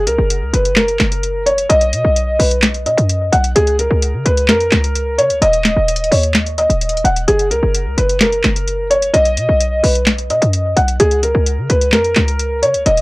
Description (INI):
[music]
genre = hip hop, trap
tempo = 129 BPM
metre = 4/4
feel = half-time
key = unclear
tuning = A4 = 439 Hz
[part]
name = short 808-style bass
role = bass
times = 0.0-13.0 s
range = D#1 to C#3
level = -17 LUFS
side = equal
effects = transformer saturation
[part]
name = felt-muted upright piano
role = melody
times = 0.1-13.0 s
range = G#4 to F#5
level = -15 LUFS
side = equal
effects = low-pass filter, tape echo
[part]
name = booming analog drum machine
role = drums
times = 0.1-13.0 s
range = handclaps, hi-hat, snare drum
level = -16 LUFS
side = equal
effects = none
[sound]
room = little or no reverb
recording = dry, gritty hardware recording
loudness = -12 LUFS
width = side -22 dB against mid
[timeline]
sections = 0.0-13.0 A section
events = none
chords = 0.0 F#; 1.7 B; 3.6 N.C.; 7.3 F#; 9.1 B; 11.0 N.C.